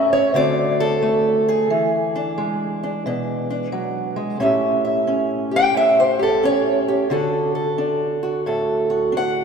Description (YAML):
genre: acoustic country blues, solo or duo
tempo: 89 BPM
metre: 4/4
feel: swing 65% on 8ths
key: unclear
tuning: A4 = 440 Hz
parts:
  - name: fingerpicked acoustic archtop guitar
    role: solo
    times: 0.0-9.4 s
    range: A2 to G5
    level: -17 LUFS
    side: equal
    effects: none
room: wet church reverb, RT60 3.5 s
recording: recorded in a church or concert hall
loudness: -17 LUFS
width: side -6 dB against mid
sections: 0.0-4.4 A section; 4.4-9.4 B section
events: steel-string acoustic guitar solo 4.4-9.4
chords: 0.3 D7; 1.7 E7; 4.4 A7; 7.1 D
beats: 0.35 1.02 | 1.70 2.38 3.05 3.73 | 4.40 5.08 5.75 6.43 | 7.10 7.78 8.45 9.13